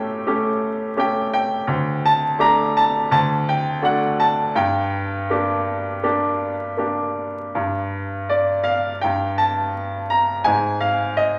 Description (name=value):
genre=classical, lyrical solo piano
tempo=82 BPM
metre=4/4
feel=uneven beats, rubato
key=G minor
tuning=A4 = 440 Hz
part: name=bright baby grand piano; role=solo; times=0.0-11.4 s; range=D2 to Bb5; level=-21 LUFS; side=equal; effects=none
room=wet scoring stage reverb, RT60 2.0 s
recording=vinyl crackle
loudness=-21 LUFS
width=mono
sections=0.0-7.5 A section; 7.5-11.4 B section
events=none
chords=0.0 A7; 1.7 Dsus4; 3.1 D; 4.6 Gm; 7.5 N.C.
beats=0.28 0.98 | 1.69 2.40 3.12 3.84 | 4.56 5.29 6.03 6.79 | 7.55 8.30 9.04 9.76 | 10.47 11.17